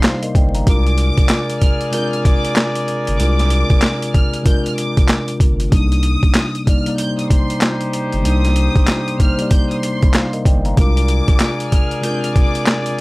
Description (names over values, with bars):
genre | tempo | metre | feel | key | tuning
hip hop, boom-bap hip-hop | 95 BPM | 4/4 | swing 62% on 16ths | unclear | A4 = 441 Hz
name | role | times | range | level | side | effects
warm studio violin section | melody | 0.0-12.8 s | C6 to G6 | -26 LUFS | left 1 dB | none
mellow tine electric piano | accompaniment | 0.0-13.0 s | C3 to Bb5 | -21 LUFS | left 1 dB | medium stereo tremolo, cassette tape
clear trumpet section | stabs | 0.0-13.0 s | Eb4 to D5 | -25 LUFS | equal | none
boom bap sampler-style drum kit | drums | 0.0-13.0 s | handclaps, hi-hat, kick drum, snare drum | -15 LUFS | equal | none
saturated sub bass | bass | 0.4-11.2 s | G1 to C2 | -16 LUFS | equal | none
room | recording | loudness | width
little or no reverb | dry, gritty hardware recording, vinyl crackle | -13 LUFS | side -22 dB against mid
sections
0.0-13.0 A section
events
none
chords
0.0 Cm7; 0.7 Bb7; 5.7 Cm7; 10.8 Bb7